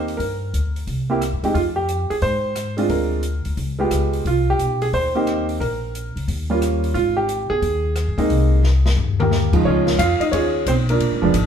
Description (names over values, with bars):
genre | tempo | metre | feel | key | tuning
jazz piano trio | 178 BPM | 4/4 | swing 65% on 8ths | Ab major | A4 = 440 Hz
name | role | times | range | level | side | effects
clear baby grand piano | melody | 0.0-11.5 s | Db2 to F5 | -20 LUFS | right 2 dB | plate reverb
upright bass | bass | 0.0-11.5 s | F1 to Ab2 | -21 LUFS | left 1 dB | none
open jazz drum kit | drums | 0.1-11.4 s | crash cymbal, hi-hat, kick drum, ride cymbal, rim click, snare drum, toms | -26 LUFS | left 4 dB | none
room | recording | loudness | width
wet studio reverb, RT60 1.0 s | heard from further back in the room | -18 LUFS | side -8 dB against mid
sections
0.0-9.6 A section; 9.6-11.5 B section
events
drum fill 8.6-9.3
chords
0.2 Gm; 0.9 C; 1.5 Fmadd9; 2.9 Dm7b5; 3.6 Db7#11; 4.2 Cm7; 5.6 Bbm; 6.3 Eb7; 7.0 Abmaj7; 9.6 Dbadd9